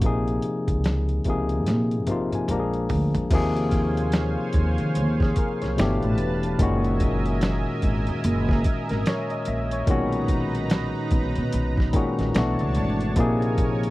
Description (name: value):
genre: R&B, neo-soul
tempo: 73 BPM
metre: 4/4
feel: swing 61% on 16ths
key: unclear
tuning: A4 = 440 Hz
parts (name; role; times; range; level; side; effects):
- barky tine electric piano; accompaniment; 0.0-13.9 s; Bb2 to Bb5; -25 LUFS; left 2 dB; overdrive
- upright bass; bass; 0.0-13.9 s; E1 to Eb3; -25 LUFS; equal; none
- boom bap sampler-style drum kit; drums; 0.0-13.9 s; crash cymbal, hi-hat, kick drum, snare drum, toms; -25 LUFS; equal; none
- lush unison pad; sustained chords; 3.3-13.9 s; D4 to A#5; -32 LUFS; right 4 dB; chorus
room: little or no reverb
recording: dry, close 1970s-style studio recording, vinyl crackle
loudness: -21 LUFS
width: side -18 dB against mid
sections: 0.0-3.3 A section; 3.3-13.9 B section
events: drum fill 1.7-3.3; tine electric piano fill 1.7-3.3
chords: 0.0 Bbm9; 2.5 Bb7; 3.3 Eb13sus4; 5.8 G9; 6.6 Gb13; 9.9 Bmaj7; 12.3 Bm9; 13.2 Bbm9